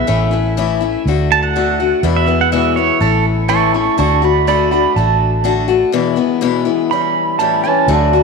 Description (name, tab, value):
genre	honky-tonk and classic country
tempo	123 BPM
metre	4/4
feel	straight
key	A major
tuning	A4 = 439 Hz
part	pedal steel guitar	second line	0.0-7.9 s	A4 to C#6	-16 LUFS	right 10 dB	tape echo
part	picked acoustic archtop guitar	accompaniment	0.0-8.2 s	E2 to F#4	-16 LUFS	left 9 dB	none
part	vintage muted fingered electric bass	bass	0.1-8.2 s	A1 to E2	-17 LUFS	right 1 dB	none
part	electric guitar through a small old amp	melody	7.7-8.2 s	E3 to D4	-13 LUFS	right 2 dB	lush chorus, tape echo
room	moderate echo chamber reverb, RT60 2.6 s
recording	1960s-style stereo with parts hard left and right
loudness	-12 LUFS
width	side -4 dB against mid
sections	0.0-7.9 A section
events	pedal steel guitar solo 0.0-7.9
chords	0.1 A; 1.1 D; 2.0 E; 3.0 A; 4.0 D; 5.9 E; 6.9 A7